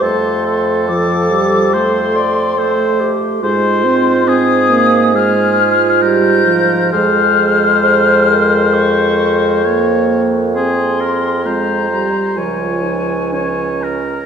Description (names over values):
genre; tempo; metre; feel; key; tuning
classical, slow romantic movement for wind quintet; 58-72 BPM; 4/4; rubato; F major, F minor from 3.4 s; A4 = 440 Hz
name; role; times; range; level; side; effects
mellow hollow silver concert flute; melody; 0.0-14.3 s; Ab5 to G6; -17 LUFS; left 4 dB; none
clear oboe; second line; 0.0-14.3 s; Ab4 to D5; -20 LUFS; left 3 dB; none
dark French horn; accompaniment; 0.0-14.0 s; F3 to C4; -18 LUFS; right 1 dB; none
dark clarinet; accompaniment; 0.0-14.3 s; Db4 to C5; -20 LUFS; right 6 dB; none
warm bassoon; bass; 0.0-14.3 s; Db2 to Ab2; -17 LUFS; right 1 dB; none
room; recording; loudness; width
wet recital hall reverb, RT60 1.7 s; heard from further back in the room; -11 LUFS; side -7 dB against mid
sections
0.0-14.3 A section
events
none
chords
0.0 F; 3.4 Fm/Ab; 6.9 Fm; 8.7 Bbm/F; 10.6 Fm; 12.4 Bbm/Db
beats
| 0.02 0.89 1.74 2.59 | 3.43 4.28 5.15 6.03 | 6.93 7.83 8.74 9.65 | 10.55 11.46 12.37 13.33